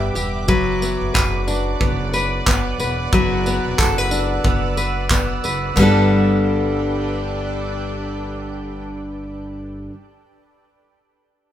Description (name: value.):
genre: acoustic pop.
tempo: 91 BPM.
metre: 4/4.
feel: swing 60% on 16ths.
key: G major.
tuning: A4 = 440 Hz.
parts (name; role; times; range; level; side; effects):
nylon-string guitar; accompaniment; 0.0-9.9 s; G2 to B4; -20 LUFS; left 2 dB; none.
shimmering ambient pad; sustained chords; 0.0-9.2 s; D4 to E6; -29 LUFS; right 4 dB; chorus, built-in reverb.
upright bass; bass; 0.0-9.9 s; E1 to G1; -26 LUFS; right 1 dB; none.
modern studio drum kit; drums; 0.2-6.0 s; crash cymbal, handclaps, kick drum, tambourine; -21 LUFS; equal; none.
tambourine; percussion; 1.2-6.1 s; none; -32 LUFS; right 10 dB; none.
room: light reverb.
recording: band playing live in one room.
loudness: -17 LUFS.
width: side -11 dB against mid.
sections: 0.0-5.8 A section; 5.8-8.4 B section.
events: none.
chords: 0.5 Bm; 5.8 Gadd9.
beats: | 0.48 1.14 1.80 2.46 | 3.12 3.78 4.44 5.11 | 5.77 6.43 7.09 7.75.